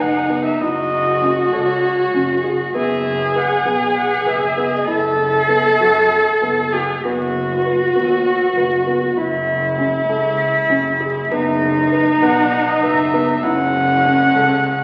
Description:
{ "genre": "contemporary instrumental, chamber music in an uneven meter", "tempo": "197 BPM (eighths)", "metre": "7/8", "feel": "straight", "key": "F# dorian", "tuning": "A4 = 435 Hz", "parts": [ { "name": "dark erhu", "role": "melody", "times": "0.0-6.7, 12.2-14.8 s", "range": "C#5 to G#5", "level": "-22 LUFS", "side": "equal", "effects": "none" }, { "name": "dark cello", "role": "second line", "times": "0.0-14.8 s", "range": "C#4 to A4", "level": "-19 LUFS", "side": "equal", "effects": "none" }, { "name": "felt-muted upright piano", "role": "arpeggios", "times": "0.0-14.7 s", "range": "B3 to B4", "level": "-26 LUFS", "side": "equal", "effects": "none" }, { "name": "warm double bass", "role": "bass", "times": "0.0-14.8 s", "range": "F#1 to F#2", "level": "-29 LUFS", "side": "equal", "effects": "none" } ], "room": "wet scoring stage reverb, RT60 1.7 s", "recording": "very old 78 rpm record, vinyl crackle", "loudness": "-17 LUFS", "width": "mono", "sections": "0.0-14.8 A section", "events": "none", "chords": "0.0 G#m7/F# (rootless); 0.6 F#m7; 2.7 Eadd9/F#; 4.9 B7sus4/F#; 7.0 B/F#; 9.2 F#m7; 11.3 Esus2/F#; 13.4 F#m7" }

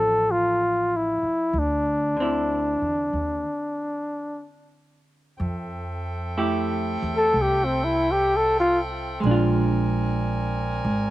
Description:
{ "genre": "jazz ballad", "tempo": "62 BPM", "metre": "4/4", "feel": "swing 68% on 8ths", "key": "unclear", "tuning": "A4 = 441 Hz", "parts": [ { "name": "trumpet with bucket mute", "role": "melody", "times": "0.0-8.8 s", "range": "C4 to A4", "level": "-22 LUFS", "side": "left 1 dB", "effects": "none" }, { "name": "vintage hollow-body jazz guitar", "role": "accompaniment", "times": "0.0-11.1 s", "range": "D3 to G4", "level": "-28 LUFS", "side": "right 2 dB", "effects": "slapback echo" }, { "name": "upright bass", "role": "bass", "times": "0.0-11.1 s", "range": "Ab1 to F2", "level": "-28 LUFS", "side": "equal", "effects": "none" }, { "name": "bright saxophone section", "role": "sustained chords", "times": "5.4-11.1 s", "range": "C4 to Ab5", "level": "-31 LUFS", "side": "right 1 dB", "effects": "none" } ], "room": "little or no reverb", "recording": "recorded outdoors, with no room sound", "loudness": "-21 LUFS", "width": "side -15 dB against mid", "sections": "0.0-5.4 A section; 5.4-11.1 B section", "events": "break 3.5-5.4; muted trumpet solo 5.4-11.1", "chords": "0.0 Dm9; 5.4 Fmaj9; 9.2 Bb7" }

